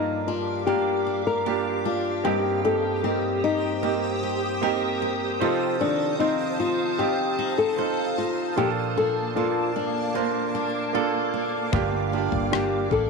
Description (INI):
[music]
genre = pop ballad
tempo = 76 BPM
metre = 4/4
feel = straight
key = Bb major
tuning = A4 = 440 Hz
[part]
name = flamenco guitar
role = melody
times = 0.0-13.1 s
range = D4 to Bb4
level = -26 LUFS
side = left 6 dB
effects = none
[part]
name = clear baby grand piano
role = accompaniment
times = 0.0-13.1 s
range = G2 to D5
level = -27 LUFS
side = right 12 dB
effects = none
[part]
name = granular cloud pad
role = sustained chords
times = 0.0-13.1 s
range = Bb3 to Eb6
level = -31 LUFS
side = right 1 dB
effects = built-in reverb, phaser
[part]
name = picked steel-string acoustic guitar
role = arpeggios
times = 0.0-13.1 s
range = G2 to Bb4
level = -31 LUFS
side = left 10 dB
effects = slapback echo
[part]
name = vintage muted fingered electric bass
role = bass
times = 11.7-13.1 s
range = G1 to A1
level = -29 LUFS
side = equal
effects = none
[part]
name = damped 70s drum kit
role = drums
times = 11.7-13.1 s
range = kick drum, rim click, toms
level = -28 LUFS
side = left 5 dB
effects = none
[sound]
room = moderate plate reverb, RT60 2.0 s, small room ambience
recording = 1960s-style stereo with parts hard left and right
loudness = -22 LUFS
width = side -4 dB against mid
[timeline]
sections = 0.0-13.1 A section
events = none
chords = 0.0 Gm7; 2.3 Cm7/G; 5.4 F7; 8.6 Bbmaj7; 11.7 Gm7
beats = 0.68 1.47 | 2.26 3.05 3.84 4.62 | 5.41 6.20 6.99 7.78 | 8.57 9.36 10.15 10.94 | 11.73 12.52